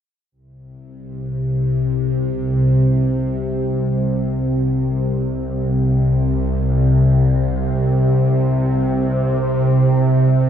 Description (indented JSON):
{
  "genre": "ambient",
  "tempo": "free time",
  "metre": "none",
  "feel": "none",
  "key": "unclear",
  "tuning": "A4 = 440 Hz",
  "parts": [
    { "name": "bowed-like drone", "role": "drone", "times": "1.1-10.5 s", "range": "C2 to C3", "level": "-16 LUFS", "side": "equal", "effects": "built-in reverb, phaser" }
  ],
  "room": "wet cathedral reverb, RT60 5.1 s",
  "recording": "none",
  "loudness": "-15 LUFS",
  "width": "side -9 dB against mid",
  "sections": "0.3-10.5 A section",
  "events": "filter sweep on synth drone 0.3-10.5",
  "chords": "none"
}